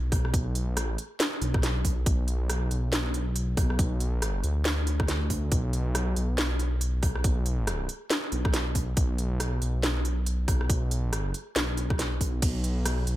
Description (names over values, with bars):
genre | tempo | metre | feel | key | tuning
deep dubstep | 139 BPM | 4/4 | swing 60% on 16ths, half-time | B minor | A4 = 440 Hz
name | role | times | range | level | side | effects
dark detuned saw bass | bass | 0.0-13.2 s | B1 to D2 | -27 LUFS | equal | none
electronic kick drum | drums | 0.1-12.5 s | none | -27 LUFS | equal | none
garage drum kit | drums | 0.1-13.2 s | hi-hat, ride cymbal, rim click, snare drum | -30 LUFS | equal | none
room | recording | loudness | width
little or no reverb | none | -25 LUFS | side -15 dB against mid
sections
0.0-13.2 A section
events
none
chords
none